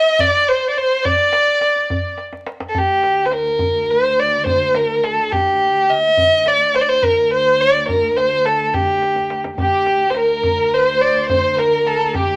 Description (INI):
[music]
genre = Persian modal ensemble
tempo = 70 BPM (dotted quarters)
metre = 6/8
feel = straight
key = D dastgah shur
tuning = A4 = 441 Hz
[part]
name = dark violin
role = melody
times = 0.0-12.4 s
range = G4 to E5-49c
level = -17 LUFS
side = equal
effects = none
[part]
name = rich chamber violin section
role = second line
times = 0.0-2.2, 9.6-12.4 s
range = G4 to Eb5+45c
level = -23 LUFS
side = equal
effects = none
[part]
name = tombak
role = percussion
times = 0.2-12.3 s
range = none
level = -28 LUFS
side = equal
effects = none
[part]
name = muted chamber cello section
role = drone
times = 2.8-12.4 s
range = D2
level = -33 LUFS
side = equal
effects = none
[sound]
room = moderate studio reverb, RT60 0.7 s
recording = vinyl crackle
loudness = -16 LUFS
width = mono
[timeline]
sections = 0.0-2.8 A section; 2.8-12.4 B section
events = drum fill 2.2-2.8, 9.0-9.6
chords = none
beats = 0.20 | 1.05 1.91 | 2.76 3.61 | 4.47 5.32 | 6.18 7.03 | 7.89 8.74 | 9.59 10.45 | 11.30 12.16